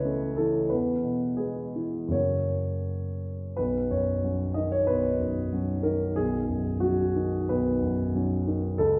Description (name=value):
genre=neoclassical minimalist piano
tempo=78-96 BPM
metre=4/4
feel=rubato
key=B major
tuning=A4 = 440 Hz
part: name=dark concert grand piano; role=solo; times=0.0-9.0 s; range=B1 to E5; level=-27 LUFS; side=equal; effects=none
room=wet recital hall reverb, RT60 1.7 s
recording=recorded in a church or concert hall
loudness=-28 LUFS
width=mono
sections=0.0-3.6 A section; 3.6-9.0 A section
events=none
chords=0.0 A/C#; 0.7 E; 2.1 F#; 3.6 Badd9